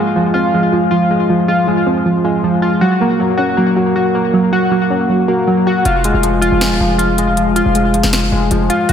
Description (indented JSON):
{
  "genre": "hip hop, trap",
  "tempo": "158 BPM",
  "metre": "4/4",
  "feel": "half-time",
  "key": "F phrygian",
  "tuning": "A4 = 440 Hz",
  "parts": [
    { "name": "soft round pluck", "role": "accompaniment", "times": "0.0-5.9, 8.9 s", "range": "F3 to Gb4", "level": "-16 LUFS", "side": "right 4 dB", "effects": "chorus" },
    { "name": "warbly lo-fi synth keys", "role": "arpeggios", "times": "0.0-8.9 s", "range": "F3 to Gb4", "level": "-13 LUFS", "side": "left 2 dB", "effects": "chorus, ping-pong delay" },
    { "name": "hard-hitting 808-style bass", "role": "bass", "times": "5.9-8.9 s", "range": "Eb1 to Gb1", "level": "-17 LUFS", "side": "equal", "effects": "none" },
    { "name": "trap drum kit", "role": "drums", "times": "5.9-8.9 s", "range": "finger snaps, hi-hat, snare drum", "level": "-20 LUFS", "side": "left 1 dB", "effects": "none" }
  ],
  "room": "wet lush hall reverb, RT60 1.8 s",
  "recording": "dreamy mix soaked in reverb",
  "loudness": "-11 LUFS",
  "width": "side -8 dB against mid",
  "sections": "0.0-8.9 A section",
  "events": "none",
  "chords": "0.0 Fm; 2.8 Gb; 5.9 Fm",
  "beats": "0.16 0.54 0.92 | 1.29 1.68 2.06 2.44 | 2.81 3.19 3.57 3.95 | 4.33 4.71 5.09 5.47 | 5.85 6.23 6.61 6.99 | 7.37 7.75 8.13 8.51 | 8.89"
}